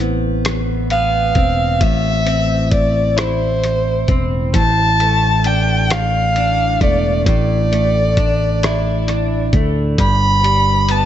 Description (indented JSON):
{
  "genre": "six-eight pop ballad",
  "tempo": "44 BPM (dotted quarters)",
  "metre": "6/8",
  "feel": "straight",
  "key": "unclear",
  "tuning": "A4 = 438 Hz",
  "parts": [
    { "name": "direct-recorded clean electric guitar", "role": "accompaniment", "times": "0.0-11.1 s", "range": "G2 to E4", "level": "-21 LUFS", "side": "equal", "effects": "double-tracked left and right" },
    { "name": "fingered electric bass", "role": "bass", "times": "0.0-11.1 s", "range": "E1 to D2", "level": "-18 LUFS", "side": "equal", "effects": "none" },
    { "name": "lo-fi sampler-style drum kit", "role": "drums", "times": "0.5-11.1 s", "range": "hi-hat, kick drum, rim click", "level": "-18 LUFS", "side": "equal", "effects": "none" },
    { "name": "dark violin", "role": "melody", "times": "0.9-11.1 s", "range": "C5 to B5", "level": "-17 LUFS", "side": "equal", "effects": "ping-pong delay" }
  ],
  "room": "light reverb, digital ambience",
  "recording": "nothing above 8.0 kHz",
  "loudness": "-13 LUFS",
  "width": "side -11 dB against mid",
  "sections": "0.0-11.1 A section",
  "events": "none",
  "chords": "0.0 Amadd9; 4.5 Dsus2; 10.0 G"
}